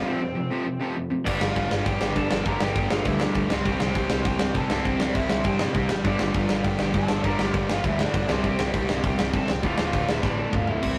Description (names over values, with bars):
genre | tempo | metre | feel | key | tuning
punk rock | 200 BPM | 4/4 | straight | unclear | A4 = 440 Hz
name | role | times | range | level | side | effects
lead guitar through a small cranked amp | melody | 0.0-11.0 s | C4 to Bb5 | -34 LUFS | equal | overdrive
cranked stack guitar | riff | 0.0-10.9 s | D2 to C4 | -35 LUFS | equal | none
distorted electric guitar | riff | 0.0-11.0 s | D2 to C4 | -31 LUFS | equal | overdrive
sludgy distorted guitar | riff | 1.3-10.8 s | D2 to C5 | -37 LUFS | equal | none
growling picked electric bass | bass | 1.3-11.0 s | D1 to C3 | -33 LUFS | equal | overdrive
big rock drum kit | drums | 1.3-10.9 s | crash cymbal, kick drum, snare drum, toms | -28 LUFS | equal | none
room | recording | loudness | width
moderate booth ambience, RT60 0.3 s | rough rehearsal-room recording, tube saturation | -24 LUFS | mono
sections
0.0-1.3 A section; 1.3-10.8 B section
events
break 0.1-1.3; drum fill 10.2-10.8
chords
0.0 F5; 1.3 Gm; 3.5 C; 6.0 Gm; 8.3 C; 9.6 Dm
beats
| 0.06 0.36 0.66 0.96 | 1.26 1.56 1.86 2.16 | 2.46 2.76 3.06 3.36 | 3.66 3.96 4.25 4.55 | 4.85 5.15 5.45 5.75 | 6.05 6.35 6.65 6.95 | 7.25 7.55 7.84 8.14 | 8.44 8.74 9.04 9.34 | 9.64 9.94 10.24 10.54 | 10.84